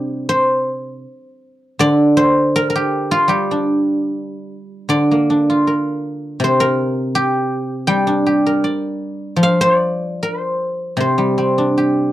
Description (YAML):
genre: chinese traditional, Chinese solo plucked strings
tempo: 73-82 BPM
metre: 2/4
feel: rubato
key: G yu mode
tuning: A4 = 440 Hz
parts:
  - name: guzheng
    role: solo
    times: 0.0-12.1 s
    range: C3 to G5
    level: -15 LUFS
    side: equal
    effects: none
room: little or no reverb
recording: dry, close 1970s-style studio recording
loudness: -14 LUFS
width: side -14 dB against mid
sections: 0.0-4.9 A section; 4.9-12.1 B section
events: none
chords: none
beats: | 0.29 1.05 | 1.80 2.55 | 3.31 4.09 | 4.89 5.66 | 6.41 7.14 | 7.88 8.62 | 9.39 10.19 | 10.99 11.76